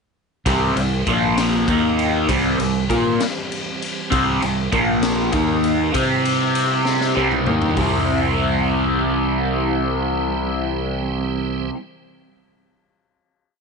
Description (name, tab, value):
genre	psychedelic rock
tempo	66 BPM (dotted quarters)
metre	6/8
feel	straight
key	C mixolydian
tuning	A4 = 440 Hz
part	tonewheel organ	sustained chords	0.5-11.7 s	E3 to C5	-29 LUFS	right 12 dB	slow rotary speaker, overdrive, chorus vibrato
part	raw garage guitar	riff	0.5-11.8 s	Bb2 to C5	-18 LUFS	equal	overdrive, phaser
part	fingered electric bass	bass	0.5-11.7 s	Bb1 to C3	-25 LUFS	right 1 dB	none
part	raw garage drum kit	drums	0.5-7.9 s	hi-hat, kick drum, ride cymbal, snare drum, toms	-25 LUFS	left 3 dB	none
room	little or no reverb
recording	1960s-style stereo, nothing above 10.8 kHz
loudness	-17 LUFS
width	side -4 dB against mid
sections	0.5-7.8 riff; 7.8-11.4 final chord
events	drum fill 6.9-7.8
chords	0.5 C; 1.1 Bb5; 1.7 Eb5; 2.3 C; 4.7 Bb5; 5.3 Eb5; 5.9 C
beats	| 0.46 1.37 | 2.29 3.20 | 4.12 5.03 | 5.95 6.86 | 7.77 8.69 | 9.60 10.52